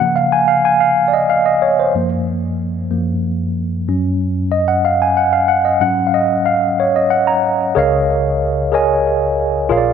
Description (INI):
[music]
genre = gospel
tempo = 62 BPM (dotted quarters)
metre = 6/8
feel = straight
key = Db major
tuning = A4 = 441 Hz
[part]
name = mellow tine electric piano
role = solo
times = 0.0-9.9 s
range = Bb1 to Bb5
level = -13 LUFS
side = equal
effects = medium stereo tremolo
[sound]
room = moderate echo chamber reverb, RT60 2.0 s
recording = none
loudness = -13 LUFS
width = side -7 dB against mid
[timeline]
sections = 0.0-7.8 A section; 7.8-9.9 B section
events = tine electric piano solo 0.0-7.8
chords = 0.0 Db6; 1.9 Gbmaj7; 3.9 Ebm11/Gb; 5.8 Ab7sus4; 7.8 Db69